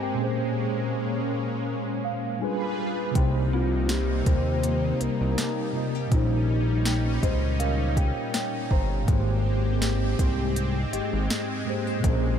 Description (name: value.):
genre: contemporary R&B.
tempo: 81 BPM.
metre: 4/4.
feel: swing 54% on 16ths.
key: unclear.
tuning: A4 = 440 Hz.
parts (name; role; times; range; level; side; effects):
mellow tine electric piano; accompaniment; 0.0-12.4 s; Ab2 to B5; -29 LUFS; equal; medium stereo tremolo.
warm analog pad; sustained chords; 0.0-12.4 s; C3 to B4; -31 LUFS; left 1 dB; chorus.
nylon-string guitar; arpeggios; 3.2-12.4 s; C3 to C5; -35 LUFS; left 7 dB; wide subtle chorus, analog delay.
fat analog bass; bass; 3.2-12.4 s; G1 to Eb2; -26 LUFS; equal; none.
smooth R&B drum kit; drums; 3.2-12.2 s; hi-hat, kick drum, snare drum; -27 LUFS; equal; overdrive.
soft octave-layered synth lead; melody; 3.5-7.6 s; Eb4 to C5; -34 LUFS; left 2 dB; chorus, tremolo, analog delay.
synth chime; texture; 3.5-12.4 s; C4 to Eb5; -40 LUFS; equal; none.
room: moderate huge ambient reverb, RT60 7.0 s.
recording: dreamy mix soaked in reverb.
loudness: -23 LUFS.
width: side -8 dB against mid.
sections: 0.0-12.4 A section.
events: tine electric piano fill 1.7-3.2, 6.9-9.1.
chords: 0.2 Bbm7; 2.4 G7b9; 3.2 Cm7; 6.1 Eb13/Bb; 9.1 Abmaj7.